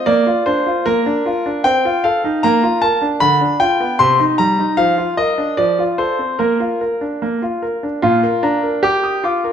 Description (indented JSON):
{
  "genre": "classical-period piano sonatina",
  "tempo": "76 BPM",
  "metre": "2/4",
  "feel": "straight",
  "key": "Bb major",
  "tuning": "A4 = 437 Hz",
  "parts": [
    { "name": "clear concert grand piano", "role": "solo", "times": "0.0-9.5 s", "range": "Bb2 to Eb6", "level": "-14 LUFS", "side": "equal", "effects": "none" }
  ],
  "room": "wet recital hall reverb, RT60 1.8 s",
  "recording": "none",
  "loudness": "-14 LUFS",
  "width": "side -8 dB against mid",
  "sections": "0.0-8.0 A section; 8.0-9.5 B section",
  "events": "none",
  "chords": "0.1 Bb; 1.6 F7/C; 2.4 Bb; 3.2 G7/D; 4.0 Cm; 4.8 Bb/F; 5.6 F; 6.4 Bb"
}